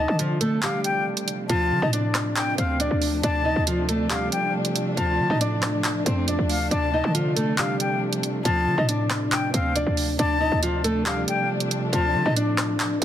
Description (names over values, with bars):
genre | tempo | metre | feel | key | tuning
hip hop, drill | 138 BPM | 4/4 | half-time | D phrygian | A4 = 443 Hz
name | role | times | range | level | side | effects
nylon-string guitar | melody | 0.0-13.0 s | F3 to Eb5 | -26 LUFS | equal | low-pass filter, ping-pong delay
silver concert flute | second line | 0.0-12.3 s | F5 to A5 | -28 LUFS | left 5 dB | ping-pong delay
dark studio string section | sustained chords | 0.0-13.0 s | C3 to D4 | -29 LUFS | equal | none
short 808-style bass | bass | 0.0-13.0 s | D2 to F3 | -27 LUFS | equal | none
drill drum kit | drums | 0.2-13.0 s | handclaps, hi-hat, rim click | -27 LUFS | right 2 dB | none
room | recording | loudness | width
light reverb, studio ambience | dense, heavily limited modern master | -21 LUFS | side -10 dB against mid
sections
0.0-13.0 A section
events
none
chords
0.0 Dm7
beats
0.19 0.63 1.06 | 1.50 1.93 2.37 2.80 | 3.23 3.67 4.10 4.54 | 4.97 5.41 5.84 6.28 | 6.71 7.15 7.58 8.02 | 8.45 8.89 9.32 9.76 | 10.19 10.63 11.06 11.49 | 11.93 12.37 12.80